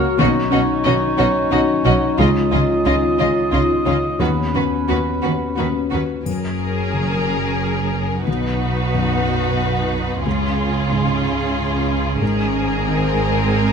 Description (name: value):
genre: cinematic, emotional film score for orchestra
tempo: 90 BPM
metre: 3/4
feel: rubato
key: F# major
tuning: A4 = 440 Hz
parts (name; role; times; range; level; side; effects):
- mellow cor anglais; second line; 0.0-5.9 s; A#4 to D#5; -24 LUFS; right 2 dB; none
- warm clarinet; second line; 0.0-5.9 s; C#4 to F#4; -24 LUFS; equal; none
- felt-muted upright piano; accompaniment; 0.0-13.7 s; B1 to C#5; -22 LUFS; left 2 dB; none
- dark French horn section; sustained chords; 0.0-5.9 s; A#3 to F#4; -24 LUFS; left 6 dB; none
- rich studio violin section; melody; 0.2-13.7 s; G#4 to D#5; -27 LUFS; left 3 dB; none
- rich studio violin section; second line; 0.2-13.7 s; E#4 to G#4; -25 LUFS; left 2 dB; none
- rich studio viola section; accompaniment; 0.2-13.7 s; B#3 to D#4; -27 LUFS; right 1 dB; none
- rich studio double bass section; bass; 0.2-13.7 s; F#1 to D#2; -25 LUFS; right 4 dB; none
- warm studio cello section; bass; 0.2-13.7 s; F#2 to D#3; -24 LUFS; right 3 dB; none
- triangle; percussion; 6.3-7.6 s; none; -41 LUFS; left 5 dB; none
room: moderate scoring stage reverb, RT60 1.7 s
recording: none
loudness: -16 LUFS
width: side -6 dB against mid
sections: 0.0-6.3 A section; 6.3-13.7 B section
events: none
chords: 0.2 Badd9; 2.2 C#add9; 4.2 Badd9/D#; 6.3 F#add9; 8.3 B; 10.3 C#; 12.2 G#add9